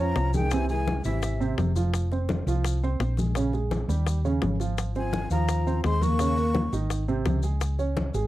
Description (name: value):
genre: Afro-Cuban jazz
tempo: 169 BPM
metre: 4/4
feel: straight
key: F minor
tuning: A4 = 439 Hz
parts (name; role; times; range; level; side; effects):
- breathy jazz flute; melody; 0.0-1.5, 5.0-6.7 s; E5 to Db6; -31 LUFS; equal; none
- mellow trombone; second line; 0.0-1.5, 5.0-6.7 s; C3 to Bb3; -32 LUFS; left 6 dB; none
- dark baby grand piano; accompaniment; 0.0-8.3 s; C3 to Db5; -30 LUFS; right 5 dB; none
- hollow-body short-scale fingered electric bass; bass; 0.0-8.3 s; F1 to F2; -26 LUFS; equal; none
- bongos; percussion; 0.2-8.3 s; none; -33 LUFS; left 6 dB; none
- congas; percussion; 0.2-8.1 s; none; -32 LUFS; left 2 dB; none
- maracas; percussion; 0.2-8.3 s; none; -44 LUFS; left 9 dB; none
room: light reverb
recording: dry, close 1970s-style studio recording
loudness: -23 LUFS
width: side -15 dB against mid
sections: 0.0-8.3 A section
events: none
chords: 0.0 Bbm9; 0.5 Caug; 1.9 Fmadd11; 3.4 Bbm7; 4.1 Eb9; 4.8 Ab69; 6.2 Eb5; 6.9 Ab; 7.6 Db5